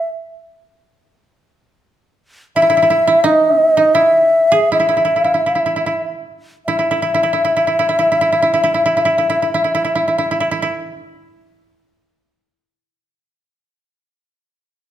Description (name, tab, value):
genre	japanese traditional, Japanese chamber music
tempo	53-91 BPM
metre	2/4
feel	rubato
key	E ryukyu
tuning	A4 = 441 Hz
part	mellow bansuri	melody	0.0-0.1, 2.6-10.5 s	D#5 to E5	-14 LUFS	left 1 dB	none
part	koto	second line	0.0-12.9 s	D#4 to G#4	-18 LUFS	right 3 dB	none
room	moderate recital hall reverb, RT60 1.4 s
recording	none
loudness	-12 LUFS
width	side -11 dB against mid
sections	0.0-6.7 A section; 6.7-11.0 B section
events	slowing down 3.3-6.7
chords	none